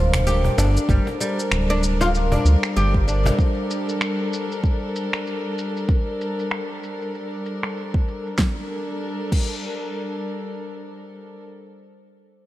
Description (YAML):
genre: organic downtempo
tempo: 96 BPM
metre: 4/4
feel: swing 59% on 16ths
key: G minor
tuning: A4 = 441 Hz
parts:
  - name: dark chamber string section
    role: sustained chords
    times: 0.0-11.4 s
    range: G3 to Bb4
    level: -27 LUFS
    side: left 1 dB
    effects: sidechain pumping
  - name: round analog bass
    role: bass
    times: 0.0-3.3 s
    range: D1 to D2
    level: -19 LUFS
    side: equal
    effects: sidechain pumping
  - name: bronze singing bowl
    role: texture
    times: 0.0-8.4 s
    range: C5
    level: -35 LUFS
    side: equal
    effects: none
  - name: deep house drum kit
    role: drums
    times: 0.1-9.5 s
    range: crash cymbal, finger snaps, shaker, snare drum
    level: -29 LUFS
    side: equal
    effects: low-pass filter on hats, small room ambience, low-pass filter on perc, low-pass filter on snare, low-pass filter on cymbals
  - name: cajon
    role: percussion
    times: 0.1-3.4 s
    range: none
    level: -28 LUFS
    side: left 1 dB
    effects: none
  - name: oud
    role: arpeggios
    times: 0.3-3.4 s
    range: G3 to G4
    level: -26 LUFS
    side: left 1 dB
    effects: tape echo
  - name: electronic kick drum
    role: drums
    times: 0.9-9.5 s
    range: none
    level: -20 LUFS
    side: equal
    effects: small room ambience
room: light reverb, studio ambience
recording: none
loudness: -20 LUFS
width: side -15 dB against mid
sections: 0.0-8.4 A section; 8.4-10.9 B section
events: filter sweep on drum 0.0-8.4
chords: 0.0 Gm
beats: 0.26 | 0.89 1.51 2.13 2.76 | 3.38 4.01 4.63 5.26 | 5.88 6.51 7.13 7.76 | 8.38 9.01 9.63 10.26